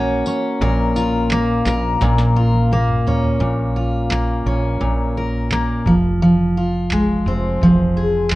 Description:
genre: acoustic pop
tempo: 86 BPM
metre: 4/4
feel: straight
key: unclear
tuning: A4 = 441 Hz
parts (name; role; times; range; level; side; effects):
- picked steel-string acoustic guitar; accompaniment; 0.0-8.4 s; Bb2 to Bb4; -16 LUFS; equal; none
- woody fretless electric bass; bass; 0.0-8.4 s; F1 to Bb1; -22 LUFS; equal; none
- booming analog drum machine; drums; 0.3-8.4 s; handclaps, kick drum, snare drum, tambourine, toms; -25 LUFS; right 1 dB; none
room: light reverb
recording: worn, warbling old tape, cassette tape, warbly pitch drift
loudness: -15 LUFS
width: side -18 dB against mid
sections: 0.0-3.4 A section; 3.4-8.4 B section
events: drum fill 2.0-3.4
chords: 0.0 Gb/Bb; 0.6 Bbm; 5.9 Fm

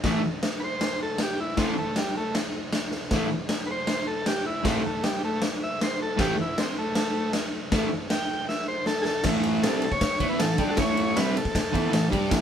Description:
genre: garage rock duo or trio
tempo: 157 BPM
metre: 4/4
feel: straight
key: unclear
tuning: A4 = 440 Hz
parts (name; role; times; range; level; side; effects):
- fuzz guitar; riff; 0.0-12.4 s; A2 to G4; -25 LUFS; equal; distortion
- raw garage drum kit; drums; 0.0-12.4 s; crash cymbal, kick drum, ride cymbal, snare drum; -27 LUFS; equal; none
- overdriven combo organ; melody; 0.6-12.1 s; G3 to G5; -28 LUFS; equal; none
room: light reverb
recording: band playing live in one room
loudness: -23 LUFS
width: side -8 dB against mid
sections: 0.0-9.2 A section; 9.2-12.4 B section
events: transistor combo organ solo 0.0-9.2; drum fill 2.9, 8.5-9.2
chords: 0.0 A5; 9.2 A

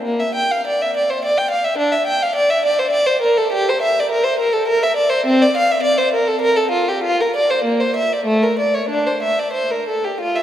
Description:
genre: classical, baroque-style suite movement for unaccompanied violin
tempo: 89-107 BPM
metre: 3/4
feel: rubato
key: D minor from 3.5 s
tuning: A4 = 441 Hz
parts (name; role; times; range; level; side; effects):
- warm violin; solo; 0.0-10.4 s; A3 to G5; -15 LUFS; equal; none
room: wet cathedral reverb, RT60 4.8 s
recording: recorded in a church or concert hall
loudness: -15 LUFS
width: side -11 dB against mid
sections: 0.0-10.4 A section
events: none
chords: none

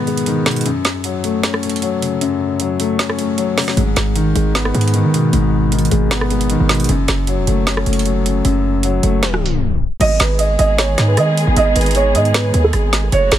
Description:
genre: hip hop, trap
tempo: 154 BPM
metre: 4/4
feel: half-time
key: G# phrygian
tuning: A4 = 440 Hz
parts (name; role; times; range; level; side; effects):
- warm baby grand piano; accompaniment; 0.0-10.0 s; F#2 to C#4; -17 LUFS; left 4 dB; low-pass filter
- trap drum kit; drums; 0.1-13.4 s; crash cymbal, hi-hat, rim click, snare drum; -20 LUFS; right 1 dB; none
- hard-hitting 808-style bass; bass; 3.8-13.4 s; E1 to D#3; -16 LUFS; right 1 dB; none
- felt-muted upright piano; melody; 10.0-13.4 s; G#4 to D#5; -16 LUFS; right 3 dB; low-pass filter, tape echo
- muted symphonic string section; sustained chords; 10.0-13.4 s; C#3 to G#4; -21 LUFS; equal; none
room: little or no reverb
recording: dense, heavily limited modern master, tape stop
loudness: -14 LUFS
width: side -11 dB against mid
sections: 0.0-10.0 A section; 10.0-13.4 B section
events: break 0.0-3.8; tape stop 9.2-10.0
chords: 0.0 G#m; 0.7 F#m; 3.8 G#m; 6.9 F#m; 10.0 G#m

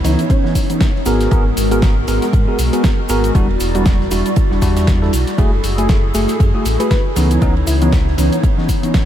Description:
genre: deep house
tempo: 118 BPM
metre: 4/4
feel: swing 57% on 16ths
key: unclear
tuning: A4 = 440 Hz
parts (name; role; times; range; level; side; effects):
- soft struck synth lead; melody; 0.0-0.7, 6.8-7.9 s; C#4 to B4; -27 LUFS; left 2 dB; chorus, analog delay
- hollow soft pad; sustained chords; 0.0-9.1 s; G3 to D5; -22 LUFS; left 1 dB; ensemble chorus, sidechain pumping
- bell-like tine electric piano; stabs; 0.0-9.0 s; E3 to A#4; -19 LUFS; equal; analog chorus, sidechain pumping, low-pass filter, analog delay
- sub bass with octave; bass; 0.0-8.3 s; E1 to G#2; -18 LUFS; equal; sidechain pumping
- deep house drum kit; drums; 0.0-9.1 s; hi-hat, snare drum; -26 LUFS; equal; none
- warm soul drum kit; drums; 0.0-9.1 s; ride cymbal, snare drum; -33 LUFS; right 4 dB; sidechain pumping on cymbals, high-pass filter on cymbals, high-pass filter on snare, high-pass filter on room
- cabasa; percussion; 0.1-9.1 s; none; -32 LUFS; left 3 dB; none
- electronic kick drum; drums; 0.3-9.1 s; none; -15 LUFS; equal; none
room: light reverb, digital ambience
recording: none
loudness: -12 LUFS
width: side -11 dB against mid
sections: 0.0-9.1 A section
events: filter sweep on tine electric piano 0.0-9.1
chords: 0.0 C#m9; 1.1 G#m9; 3.4 Em9; 5.4 F#m9; 7.2 C#m9

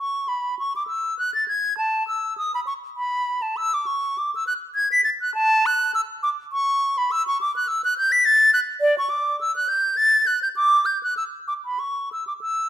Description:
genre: classical, baroque-style fantasia for unaccompanied flute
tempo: 94-106 BPM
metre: 3/4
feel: rubato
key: A major, D major from 7.1 s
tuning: A4 = 440 Hz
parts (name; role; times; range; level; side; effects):
- silver concert flute; solo; 0.0-12.7 s; D5 to B6; -19 LUFS; equal; none
room: moderate recital hall reverb, RT60 1.6 s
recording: none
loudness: -19 LUFS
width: side -12 dB against mid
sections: 0.0-12.7 A section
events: none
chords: none

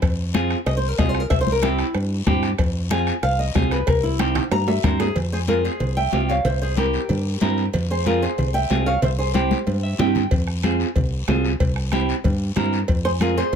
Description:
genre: latin, cumbia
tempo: 186 BPM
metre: 4/4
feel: straight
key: F harmonic minor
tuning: A4 = 440 Hz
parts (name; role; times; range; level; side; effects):
- fingered electric bass; bass; 0.0-13.6 s; C2 to G2; -23 LUFS; equal; none
- bombo; percussion; 0.0-5.2, 10.3-13.6 s; none; -24 LUFS; left 2 dB; none
- congas; percussion; 0.0-13.6 s; none; -26 LUFS; left 2 dB; none
- cowbell and timbales; percussion; 0.0-13.6 s; none; -29 LUFS; right 4 dB; none
- guiro; percussion; 0.0-13.6 s; none; -35 LUFS; left 8 dB; none
- clean electric guitar; accompaniment; 0.3-13.4 s; C4 to G5; -24 LUFS; right 4 dB; none
- flamenco guitar; melody; 0.7-10.0, 13.1-13.6 s; E4 to Bb5; -23 LUFS; left 1 dB; none
room: light reverb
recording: close, detailed microphones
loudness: -18 LUFS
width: side -7 dB against mid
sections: 0.0-5.2 A section; 5.2-13.6 B section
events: nylon-string guitar solo 0.0-5.2; drum fill 4.2-5.2, 9.5-10.3; clean electric guitar fill 9.7-10.3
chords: 0.0 Fm; 1.3 C; 2.6 Fm; 3.9 C7; 5.2 Fm; 6.5 C7; 7.7 Fm; 9.0 C; 10.3 Fm; 11.6 C7; 12.9 Fm

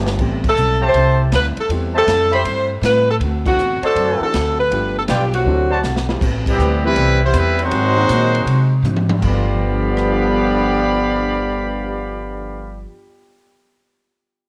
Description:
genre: jazz, big band swing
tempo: 160 BPM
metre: 4/4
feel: swing 66% on 8ths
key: G mixolydian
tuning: A4 = 443 Hz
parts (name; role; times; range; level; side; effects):
- vintage hollow-body jazz guitar; accompaniment; 0.0-13.0 s; G2 to B4; -32 LUFS; equal; cassette tape
- warm baby grand piano; accompaniment; 0.0-13.0 s; G2 to A4; -30 LUFS; equal; cassette tape
- upright bass; bass; 0.0-12.8 s; G1 to C3; -22 LUFS; equal; none
- swinging big-band drum kit; drums; 0.1-10.1 s; crash cymbal, hi-hat, kick drum, ride cymbal, rim click, snare drum, toms; -27 LUFS; equal; none
- clear saxophone section; melody; 0.5-6.1 s; F#4 to C5; -20 LUFS; equal; cassette tape
- dark trumpet section; stabs; 0.8-5.8 s; F4 to B5; -26 LUFS; equal; cassette tape
- warm trombone section; second line; 5.3-12.8 s; G2 to C4; -24 LUFS; equal; cassette tape
- bright trumpet section; melody; 6.5-12.9 s; G3 to B5; -22 LUFS; equal; cassette tape
room: moderate spring reverb, RT60 2.2 s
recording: home recording on cassette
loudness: -17 LUFS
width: mono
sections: 0.0-6.2 A section; 6.2-9.2 B section; 9.2-12.2 C section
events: drum fill 0.0, 5.8-6.2, 8.8-9.2; band accent 0.4, 3.4, 6.4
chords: 0.2 Am7; 3.2 D7; 4.7 G7; 5.5 D7; 6.2 Am9; 7.7 Ab7; 9.2 G7

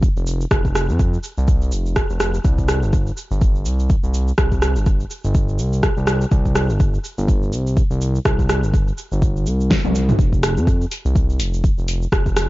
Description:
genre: afro house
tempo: 124 BPM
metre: 4/4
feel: swing 57% on 16ths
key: unclear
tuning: A4 = 440 Hz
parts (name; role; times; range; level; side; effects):
- smooth synth bass; bass; 0.0-12.5 s; F1 to F2; -19 LUFS; equal; sidechain pumping
- deep house drum kit; drums; 0.0-12.5 s; cabasa, hi-hat, rim click, snare drum, toms; -22 LUFS; equal; tape echo
- electronic kick drum; drums; 0.0-12.3 s; none; -18 LUFS; equal; none
room: little or no reverb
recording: echo-heavy mix, nothing above 7.5 kHz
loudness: -16 LUFS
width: side -19 dB against mid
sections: 0.0-12.5 A section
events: drum fill 9.7-10.2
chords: none

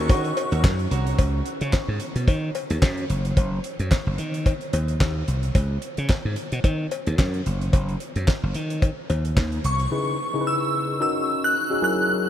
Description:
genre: early-eighties boogie funk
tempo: 110 BPM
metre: 4/4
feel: swing 56% on 16ths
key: C# dorian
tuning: A4 = 441 Hz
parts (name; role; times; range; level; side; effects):
- shimmering bell with halo; melody; 0.0-0.6, 9.7-12.3 s; C#6 to F#6; -25 LUFS; left 1 dB; ensemble chorus, analog delay
- tine electric piano; accompaniment; 0.0-0.7, 9.9-12.3 s; C#3 to B4; -28 LUFS; left 1 dB; wide subtle chorus
- slap bass; bass; 0.0-9.9 s; F#1 to D#3; -24 LUFS; equal; none
- clean electric guitar; riff; 0.1-1.2 s; F#4 to C#5; -37 LUFS; right 5 dB; wide subtle chorus
- damped 70s drum kit; drums; 0.1-9.9 s; handclaps, hi-hat, kick drum, snare drum; -24 LUFS; equal; none
- cowbell; percussion; 0.1-9.5 s; none; -33 LUFS; left 5 dB; none
room: moderate huge ambient reverb, RT60 8.0 s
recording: dreamy mix soaked in reverb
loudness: -21 LUFS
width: side -11 dB against mid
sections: 0.0-1.2 A section; 1.2-9.9 B section; 9.9-12.3 A section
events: none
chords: 0.0 D#m7; 1.2 C#5; 2.3 D#m; 3.1 N.C.; 4.2 Cm; 5.6 C#5; 6.6 D#m; 7.5 N.C.; 8.6 Cm; 9.9 C#m9; 11.0 D#m7

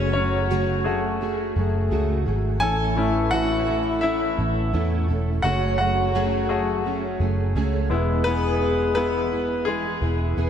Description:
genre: pop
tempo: 85 BPM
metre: 4/4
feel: swing 56% on 16ths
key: unclear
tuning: A4 = 440 Hz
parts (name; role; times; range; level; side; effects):
- dark French horn section; second line; 0.0-10.5 s; E3 to G#4; -28 LUFS; left 3 dB; none
- bright concert grand piano; accompaniment; 0.0-10.5 s; G#3 to G#5; -25 LUFS; left 2 dB; none
- fingerpicked plugged-in steel-string acoustic guitar; riff; 0.0-10.5 s; F#2 to A4; -27 LUFS; right 4 dB; ensemble chorus
- vintage muted fingered electric bass; bass; 0.0-10.5 s; E1 to E2; -25 LUFS; equal; none
room: moderate lush hall reverb, RT60 2.6 s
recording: dreamy mix soaked in reverb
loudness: -20 LUFS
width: side -8 dB against mid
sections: 0.0-10.5 A section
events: grand piano solo 0.0-10.5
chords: 0.0 F#madd9; 2.6 A; 5.4 F#madd9; 7.9 E

